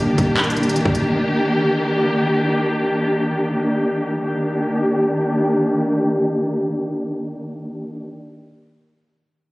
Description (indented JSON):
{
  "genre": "hip hop, trap",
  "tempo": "free time",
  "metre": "none",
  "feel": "none",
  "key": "Eb major",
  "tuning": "A4 = 440 Hz",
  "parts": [
    { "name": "warm symphonic string section", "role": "sustained chords", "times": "0.0-8.1 s", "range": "Eb3 to G4", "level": "-18 LUFS", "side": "equal", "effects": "low-pass filter" },
    { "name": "warm 808-style bass", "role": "bass", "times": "0.0-1.1 s", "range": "Eb1 to G1", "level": "-25 LUFS", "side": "equal", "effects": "none" },
    { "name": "trap drum kit", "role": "drums", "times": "0.2-1.0 s", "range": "handclaps, hi-hat, kick drum", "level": "-21 LUFS", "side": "equal", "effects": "vintage 12-bit sampler grit" }
  ],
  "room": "light reverb",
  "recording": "recorded on a phone in the room, club reverb",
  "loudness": "-17 LUFS",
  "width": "side -21 dB against mid",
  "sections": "0.0-4.2 A section; 4.2-7.3 B section",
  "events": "filter sweep on string section 0.0-4.2",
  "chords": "0.0 Ebmaj7"
}